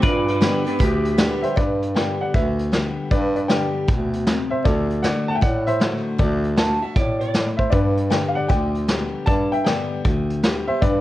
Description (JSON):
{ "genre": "honky-tonk and classic country", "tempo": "156 BPM", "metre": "4/4", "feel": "swing 64% on 8ths", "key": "G major", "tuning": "A4 = 442 Hz", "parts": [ { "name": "electric guitar through a small old amp", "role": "second line", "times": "0.0-1.6, 6.6-7.5 s", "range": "D4 to A5", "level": "-25 LUFS", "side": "right 2 dB", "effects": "tape echo" }, { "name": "picked steel-string acoustic guitar", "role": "accompaniment", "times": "0.0-11.0 s", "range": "G2 to G4", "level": "-26 LUFS", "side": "left 3 dB", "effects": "none" }, { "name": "pedal steel guitar", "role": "sustained chords", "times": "0.0-1.6 s", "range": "B4 to D5", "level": "-28 LUFS", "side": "left 2 dB", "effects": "none" }, { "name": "warm bass clarinet", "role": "bass", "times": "0.0-11.0 s", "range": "D2 to A2", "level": "-23 LUFS", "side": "right 1 dB", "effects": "none" }, { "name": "vintage brush drum kit", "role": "drums", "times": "0.0-10.9 s", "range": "hi-hat, kick drum, snare drum", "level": "-21 LUFS", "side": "equal", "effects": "none" }, { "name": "dark grand piano", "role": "accompaniment", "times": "0.4-1.5 s", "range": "D4 to B4", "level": "-29 LUFS", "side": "right 1 dB", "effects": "none" }, { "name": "warm upright piano", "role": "melody", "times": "1.4-11.0 s", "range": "A4 to A5", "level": "-25 LUFS", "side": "left 1 dB", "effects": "none" } ], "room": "light reverb", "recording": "worn, warbling old tape, cassette tape, warbly pitch drift", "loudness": "-18 LUFS", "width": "side -15 dB against mid", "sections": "0.0-1.6 A section; 1.6-11.0 B section", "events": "clean electric guitar solo 0.0-1.6", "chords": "0.0 G; 4.7 D; 7.7 G" }